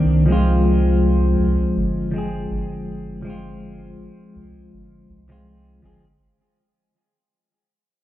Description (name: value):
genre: trip hop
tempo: 81 BPM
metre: 4/4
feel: swing 54% on 16ths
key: unclear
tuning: A4 = 441 Hz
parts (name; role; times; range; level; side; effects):
- clean electric guitar; accompaniment; 0.0-6.0 s; Eb3 to Ab4; -20 LUFS; left 1 dB; harmonic tremolo, tape echo
- round analog bass; bass; 0.0-6.2 s; G1 to C2; -21 LUFS; right 1 dB; none
room: digital ambience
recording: heard muffled through a wall, club reverb, EQ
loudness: -16 LUFS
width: side -14 dB against mid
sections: 0.0-6.2 A section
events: fade-out 0.0-6.2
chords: 0.3 Fm